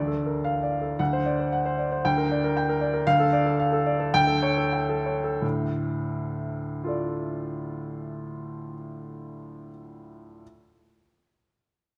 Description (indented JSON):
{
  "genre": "classical, virtuoso piano study",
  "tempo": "84-120 BPM",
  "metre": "2/4",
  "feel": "rubato",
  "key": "D minor",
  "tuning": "A4 = 439 Hz",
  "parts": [
    { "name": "warm baby grand piano", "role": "solo", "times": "0.0-10.4 s", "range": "D2 to G5", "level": "-27 LUFS", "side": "equal", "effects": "none" }
  ],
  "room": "wet scoring stage reverb, RT60 1.5 s",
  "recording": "none",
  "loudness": "-26 LUFS",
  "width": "mono",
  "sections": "1.0-5.4 A section; 5.4-8.2 B section",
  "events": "slowing down 2.6-5.4",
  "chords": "0.0 Dm; 1.0 D7; 2.0 Gm/D; 3.1 Dm; 4.1 A7/D; 5.4 Dm"
}